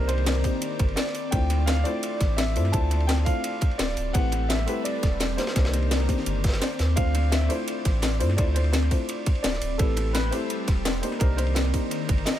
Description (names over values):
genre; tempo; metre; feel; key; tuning
liquid drum and bass; 170 BPM; 4/4; straight; D minor; A4 = 440 Hz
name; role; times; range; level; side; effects
dark baby grand piano; melody; 0.0-12.4 s; A4 to A5; -32 LUFS; right 1 dB; dub echo
felt-muted upright piano; accompaniment; 0.0-12.4 s; A3 to C5; -32 LUFS; left 3 dB; vintage 12-bit sampler grit, ping-pong delay
airy breathy pad; sustained chords; 0.0-12.4 s; Eb3 to B5; -34 LUFS; left 1 dB; chorus, phaser
warm sub bass; bass; 0.0-12.2 s; D1 to G2; -25 LUFS; equal; none
crunchy breakbeat drum kit; drums; 0.1-12.4 s; ride cymbal, snare drum; -36 LUFS; right 1 dB; high-pass filter on cymbals, high-pass filter on snare, high-pass filter on room
drum and bass drum kit; drums; 0.1-12.3 s; hi-hat, ride cymbal, snare drum; -30 LUFS; left 2 dB; overdrive
electronic kick drum; drums; 0.4-12.2 s; none; -23 LUFS; equal; overdrive
room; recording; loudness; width
small room ambience; none; -22 LUFS; side -12 dB against mid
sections
0.0-12.4 A section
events
none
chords
0.0 Cm9; 1.3 Dm9; 4.1 Am9; 5.4 Cm9; 7.0 Dm9; 9.8 Am9; 11.0 Cm9